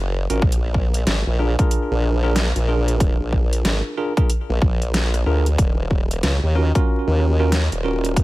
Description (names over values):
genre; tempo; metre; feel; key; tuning
glitch hop; 93 BPM; 4/4; swing 62% on 16ths; unclear; A4 = 442 Hz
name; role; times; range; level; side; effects
formant-sweep wobble bass; bass; 0.0-8.2 s; Eb1 to Eb2; -19 LUFS; equal; chorus
bell-like tine electric piano; stabs; 0.3-8.2 s; Db4 to Bb4; -24 LUFS; right 1 dB; medium stereo tremolo, vintage 12-bit sampler grit, sidechain pumping, ping-pong delay
dubstep drum kit; drums; 0.3-8.2 s; hi-hat, rim click, snare drum; -24 LUFS; equal; overdrive
electronic kick drum; drums; 0.4-8.2 s; none; -18 LUFS; equal; overdrive
room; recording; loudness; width
little or no reverb; vinyl crackle; -17 LUFS; side -18 dB against mid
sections
0.0-8.2 A section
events
none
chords
0.4 Bb7; 5.6 Ebm9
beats
| 0.42 1.07 1.72 2.36 | 3.00 3.65 4.30 4.94 | 5.59 6.23 6.88 7.52 | 8.17